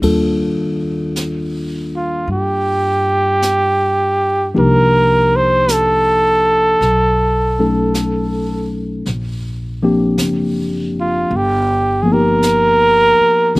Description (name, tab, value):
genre	jazz ballad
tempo	53 BPM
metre	4/4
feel	swing 68% on 8ths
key	unclear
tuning	A4 = 439 Hz
part	mellow tine electric piano	accompaniment	0.0-13.6 s	Eb3 to A4	-18 LUFS	left 2 dB	overdrive
part	upright bass	bass	0.0-13.6 s	Gb1 to G2	-21 LUFS	equal	none
part	jazz brush drum kit	drums	0.0-13.6 s	brushed snare drum, hi-hat, kick drum, ride cymbal, snare drum	-27 LUFS	right 1 dB	none
part	breathy trumpet	melody	2.0-13.6 s	F4 to C5	-13 LUFS	right 1 dB	none
room	little or no reverb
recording	recorded outdoors, with no room sound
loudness	-13 LUFS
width	side -22 dB against mid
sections	0.0-13.6 A section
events	none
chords	0.0 Ebmaj9#11; 4.5 Cm11; 6.8 B9; 9.1 Bb69; 11.3 G7alt